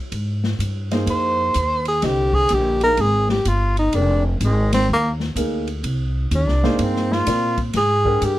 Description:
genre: modal jazz.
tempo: 126 BPM.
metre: 4/4.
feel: swing 66% on 8ths.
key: F dorian.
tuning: A4 = 438 Hz.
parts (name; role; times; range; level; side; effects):
upright bass; bass; 0.1-8.4 s; F1 to Bb2; -21 LUFS; equal; none.
open jazz drum kit; drums; 0.1-8.4 s; hi-hat, kick drum, ride cymbal, snare drum; -29 LUFS; left 2 dB; none.
warm grand piano; accompaniment; 0.9-8.4 s; D3 to Eb5; -24 LUFS; equal; none.
breathy tenor saxophone; melody; 1.1-8.4 s; F3 to C5; -19 LUFS; equal; none.
room: light reverb.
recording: close, detailed microphones.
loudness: -17 LUFS.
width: side -15 dB against mid.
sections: 0.0-8.4 A section.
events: tenor saxophone solo 0.0-8.4.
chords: 0.0 Fm11.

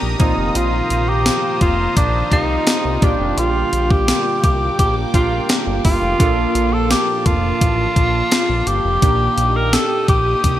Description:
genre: 1980s-style pop.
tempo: 85 BPM.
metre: 4/4.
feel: straight.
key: Bb major.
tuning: A4 = 440 Hz.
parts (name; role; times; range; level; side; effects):
chorused retro synth keys; accompaniment; 0.0-10.6 s; Bb2 to A4; -25 LUFS; right 3 dB; none.
thick fuzz guitar; accompaniment; 0.0-10.6 s; F2 to Eb4; -30 LUFS; equal; distortion, lush chorus.
sweeping resonant pad; sustained chords; 0.0-10.6 s; Bb3 to Eb6; -24 LUFS; right 1 dB; lush chorus.
fat analog bass; bass; 0.0-10.6 s; F1 to C2; -21 LUFS; equal; none.
breathy tenor saxophone; melody; 0.2-10.6 s; D4 to Bb4; -19 LUFS; equal; none.
gated 80s digital drum machine; drums; 0.2-10.6 s; hi-hat, kick drum, snare drum, tambourine; -17 LUFS; equal; gated reverb, gated reverb snare.
room: moderate plate reverb, RT60 2.8 s.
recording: bright 1980s-style digital production.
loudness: -14 LUFS.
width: side -12 dB against mid.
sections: 0.0-10.6 A section.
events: none.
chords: 0.2 F7sus4; 3.0 Gm7; 6.2 Bbmaj7; 9.0 Ebmaj7/Bb.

